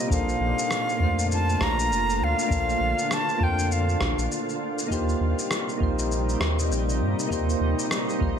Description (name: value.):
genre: sunset chillout.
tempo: 100 BPM.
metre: 4/4.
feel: swing 58% on 16ths.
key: Bb major.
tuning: A4 = 441 Hz.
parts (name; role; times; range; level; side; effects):
silver concert flute; melody; 0.0-4.3 s; F5 to Bb5; -27 LUFS; equal; digital delay.
soft electric-piano-like synth keys; accompaniment; 0.0-8.4 s; A3 to C5; -29 LUFS; right 1 dB; chorus, tremolo, auto-pan, ping-pong delay.
shimmering ambient pad; sustained chords; 0.0-8.4 s; Bb2 to F4; -30 LUFS; equal; chorus, built-in reverb.
round analog bass; bass; 0.1-8.4 s; F1 to G2; -26 LUFS; equal; none.
electronic kick drum; drums; 0.1-8.3 s; none; -28 LUFS; equal; overdrive.
electronic shaker and rim click; drums; 0.1-8.2 s; none; -31 LUFS; left 1 dB; none.
room: light reverb.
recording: none.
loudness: -22 LUFS.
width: side -8 dB against mid.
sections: 0.0-8.4 A section.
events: none.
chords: 0.1 Bbmaj7; 4.9 Eb6.